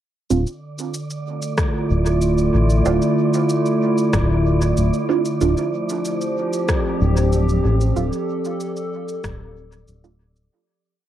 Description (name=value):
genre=ambient dub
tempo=94 BPM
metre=4/4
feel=straight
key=D minor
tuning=A4 = 440 Hz
part: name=warbly tape-like pad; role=sustained chords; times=0.8-10.5 s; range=D3 to A4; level=-20 LUFS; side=equal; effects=chorus, built-in reverb, cassette tape
part: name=filtered dub chord stab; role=stabs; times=0.3-10.2 s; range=A3 to F4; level=-24 LUFS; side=right 8 dB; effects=phaser, cassette tape, dub echo
part: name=round analog bass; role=bass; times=0.3-10.5 s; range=D1 to A1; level=-18 LUFS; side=left 1 dB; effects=tube saturation
part: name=electronic shaker and rim click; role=drums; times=0.3-10.5 s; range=none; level=-29 LUFS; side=left 1 dB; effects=cassette tape, dub echo
part: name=wind-like tuned noise texture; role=texture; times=0.7-10.5 s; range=D5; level=-31 LUFS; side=right 5 dB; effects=built-in reverb, cassette tape
part: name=electronic kick drum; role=drums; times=1.6-9.4 s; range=none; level=-23 LUFS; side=left 1 dB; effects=cassette tape
room=light reverb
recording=home recording on cassette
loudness=-17 LUFS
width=side -11 dB against mid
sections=0.3-10.5 groove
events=fade-out 7.1-10.5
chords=0.3 Dm; 5.4 F6/D